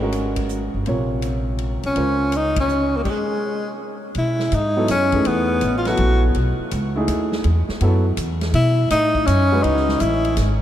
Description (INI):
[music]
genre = modal jazz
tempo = 164 BPM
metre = 3/4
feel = swing 66% on 8ths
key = B mixolydian from 4.2 s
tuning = A4 = 440 Hz
[part]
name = warm baby grand piano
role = accompaniment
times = 0.0-10.0 s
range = C3 to Db5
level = -25 LUFS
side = right 1 dB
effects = none
[part]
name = upright bass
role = bass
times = 0.0-10.6 s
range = G1 to B2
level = -21 LUFS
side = equal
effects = none
[part]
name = swinging big-band drum kit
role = drums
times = 0.1-10.5 s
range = crash cymbal, hi-hat, kick drum, ride cymbal, snare drum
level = -31 LUFS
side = equal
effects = none
[part]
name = warm tenor saxophone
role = melody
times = 1.9-6.2, 8.5-10.4 s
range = G3 to F#4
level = -21 LUFS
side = left 1 dB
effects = none
[sound]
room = moderate cathedral reverb, RT60 6.1 s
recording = in a vast, echoing space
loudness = -17 LUFS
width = side -11 dB against mid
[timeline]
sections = 0.0-4.2 A section; 4.2-10.6 B section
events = band accent 2.5; stop 3.1-4.2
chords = 0.0 Gbadd9; 4.2 B7sus4; 8.5 F#m